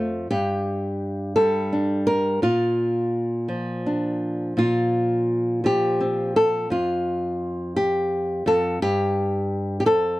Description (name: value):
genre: folk, solo fingerstyle acoustic guitar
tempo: 57 BPM (dotted quarters)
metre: 6/8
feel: rubato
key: unclear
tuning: A4 = 442 Hz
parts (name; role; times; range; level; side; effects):
- nylon-string guitar; solo; 0.0-10.2 s; F2 to Bb4; -20 LUFS; equal; none
room: little or no reverb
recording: dry, close 1970s-style studio recording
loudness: -20 LUFS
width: side -17 dB against mid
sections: 0.0-10.2 A section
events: none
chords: 0.3 Gsus2; 2.4 Bb; 4.6 Bbsus2; 6.7 N.C.; 8.8 Fadd9